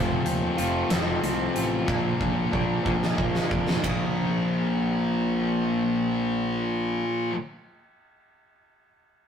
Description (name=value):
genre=quiet-loud alternative rock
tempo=61 BPM (dotted quarters)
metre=6/8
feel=straight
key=Bb mixolydian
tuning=A4 = 440 Hz
part: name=electric guitar through a small old amp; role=arpeggios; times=0.0-7.4 s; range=Bb2 to Ab4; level=-31 LUFS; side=right 2 dB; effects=none
part: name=thick fuzz guitar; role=riff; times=0.0-7.3 s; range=F2 to D4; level=-26 LUFS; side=left 2 dB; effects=distortion
part: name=fuzz fingered electric bass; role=bass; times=0.0-7.0 s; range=F1 to F2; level=-30 LUFS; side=equal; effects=overdrive
part: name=huge arena drum kit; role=drums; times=0.3-4.0 s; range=hi-hat, kick drum, ride cymbal, snare drum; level=-29 LUFS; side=right 1 dB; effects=none
room=light reverb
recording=rough rehearsal-room recording, tube saturation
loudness=-23 LUFS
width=side -8 dB against mid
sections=0.0-3.8 A section; 3.8-7.8 B section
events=drum fill 1.9-3.8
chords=0.0 F; 1.9 Bb; 3.8 Bb7